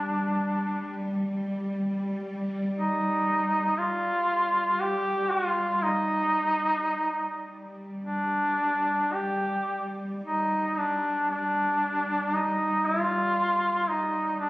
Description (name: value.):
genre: caucasian folk, Caucasian lament.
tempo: 52-61 BPM.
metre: 4/4.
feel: rubato.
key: unclear.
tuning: A4 = 440 Hz.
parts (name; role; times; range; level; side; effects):
warm duduk; melody; 0.0-14.5 s; D4 to G4; -25 LUFS; equal; none.
warm studio cello section; drone; 0.0-14.5 s; G3; -32 LUFS; equal; none.
room: moderate scoring stage reverb, RT60 1.6 s.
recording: recorded on a phone in the room, studio ambience.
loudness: -24 LUFS.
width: side -20 dB against mid.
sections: 0.0-10.2 A section; 10.2-14.5 B section.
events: none.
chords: none.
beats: 0.74 | 1.74 2.74 3.76 4.78 | 5.82 6.91 8.00 9.12 | 10.25 11.32 12.35 13.37 | 14.40.